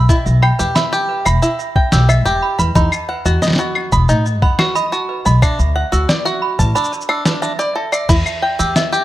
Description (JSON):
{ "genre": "folktronica", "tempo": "90 BPM", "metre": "4/4", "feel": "straight", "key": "E harmonic minor", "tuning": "A4 = 441 Hz", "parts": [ { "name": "toy piano", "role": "second line", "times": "0.0-9.0 s", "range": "B4 to E6", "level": "-22 LUFS", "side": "right 4 dB", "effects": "tape echo" }, { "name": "bluegrass banjo", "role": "arpeggios", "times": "0.0-9.0 s", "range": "D4 to B5", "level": "-18 LUFS", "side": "equal", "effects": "tape echo" }, { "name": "upright bass", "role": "bass", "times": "0.0-8.7 s", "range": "E1 to A2", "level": "-15 LUFS", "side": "equal", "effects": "none" }, { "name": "electronic kick drum", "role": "drums", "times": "0.1-8.2 s", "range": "none", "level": "-15 LUFS", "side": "equal", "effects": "none" }, { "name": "lo-fi sampler-style drum kit", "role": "drums", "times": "0.1-9.0 s", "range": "claves, crash cymbal, shaker, snare drum", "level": "-20 LUFS", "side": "left 1 dB", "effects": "none" } ], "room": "light reverb, small room ambience", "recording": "none", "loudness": "-13 LUFS", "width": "side -14 dB against mid", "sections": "0.0-8.1 A section", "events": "break 6.8-8.1", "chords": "0.0 Em; 2.8 B/E; 5.4 D; 8.1 Em", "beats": "| 0.09 0.76 1.42 2.09 | 2.76 3.42 4.09 4.76 | 5.42 6.09 6.76 7.42 | 8.09 8.76" }